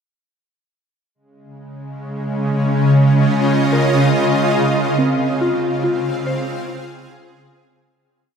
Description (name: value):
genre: ambient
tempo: 71 BPM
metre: 4/4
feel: straight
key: Db major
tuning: A4 = 441 Hz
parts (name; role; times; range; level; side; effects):
- bowed-like drone; drone; 1.9-8.0 s; Db3 to Ab3; -23 LUFS; equal; built-in reverb
- shimmering ambient pad; sustained chords; 2.1-8.0 s; Db3 to F5; -16 LUFS; right 1 dB; chorus, built-in reverb
- soft synth bell; arpeggios; 3.7-8.4 s; C4 to C5; -22 LUFS; left 1 dB; chorus, diffuse ambient delay
room: wet cathedral reverb, RT60 5.5 s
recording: none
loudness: -14 LUFS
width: side -6 dB against mid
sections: 1.2-8.0 A section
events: fade-out on synth drone 1.2-8.0; fade-out 4.6-8.0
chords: 1.2 Dbadd9; 4.6 Fm/Db